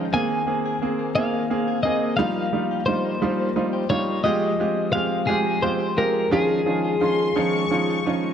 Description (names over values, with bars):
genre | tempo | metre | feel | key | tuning
six-eight pop ballad | 58 BPM (dotted quarters) | 6/8 | straight | Ab major | A4 = 441 Hz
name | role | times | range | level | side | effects
clear grand piano | accompaniment | 0.0-8.3 s | F3 to Ab4 | -24 LUFS | right 5 dB | none
direct-recorded clean electric guitar | arpeggios | 0.0-8.3 s | Eb3 to Ab4 | -29 LUFS | left 13 dB | spring reverb, analog delay
twelve-string electric guitar | melody | 0.1-8.0 s | Ab4 to Ab5 | -24 LUFS | left 2 dB | harmonic tremolo, analog delay
warm studio violin section | second line | 7.0-8.3 s | C6 to Db6 | -27 LUFS | left 4 dB | none
room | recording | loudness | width
moderate concert hall reverb, RT60 2.2 s | dark, warm production, lossy compression artefacts | -20 LUFS | side -8 dB against mid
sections
0.0-8.3 A section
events
none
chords
0.1 Abadd9; 2.2 Ebadd9; 4.3 Fmadd9; 6.3 Dbadd9